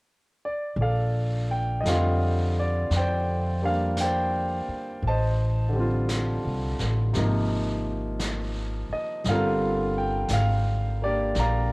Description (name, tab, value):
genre	jazz ballad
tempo	57 BPM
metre	4/4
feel	swing 66% on 8ths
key	Bb major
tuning	A4 = 440 Hz
part	clear concert grand piano	accompaniment	0.4-11.7 s	C3 to Bb5	-26 LUFS	equal	cassette tape
part	upright bass	bass	0.8-11.7 s	G1 to F2	-26 LUFS	equal	none
part	vintage brush drum kit	drums	0.8-11.7 s	brushed snare drum, hi-hat, snare drum	-37 LUFS	equal	cassette tape
room	light reverb, small room ambience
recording	home recording on cassette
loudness	-23 LUFS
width	side -26 dB against mid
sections	0.8-11.7 A section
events	none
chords	0.0 N.C.; 0.8 Bbmaj13; 5.0 Am7b5; 7.1 Abadd9; 9.2 Gm11